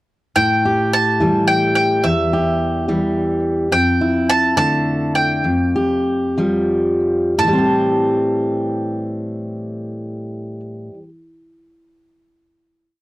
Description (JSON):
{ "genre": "indie folk with a building arrangement", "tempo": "85-108 BPM", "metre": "3/4", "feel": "straight", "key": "A minor", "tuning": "A4 = 441 Hz", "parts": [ { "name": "bowl-back mandolin", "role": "melody", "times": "0.4-10.6 s", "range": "E5 to A5", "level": "-18 LUFS", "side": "right 1 dB", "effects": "none" }, { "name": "fingerpicked steel-string acoustic guitar", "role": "accompaniment", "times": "0.4-11.1 s", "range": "E2 to G4", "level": "-17 LUFS", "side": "equal", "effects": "none" } ], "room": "light reverb", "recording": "worn, warbling old tape, cassette tape, warbly pitch drift", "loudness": "-15 LUFS", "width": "side -16 dB against mid", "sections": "0.4-7.4 verse; 7.4-11.6 final chord", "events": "slowing down 3.7-7.4", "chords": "0.4 A5; 2.0 Em; 3.7 Dmadd9/F; 5.4 Fsus2; 7.4 Am7" }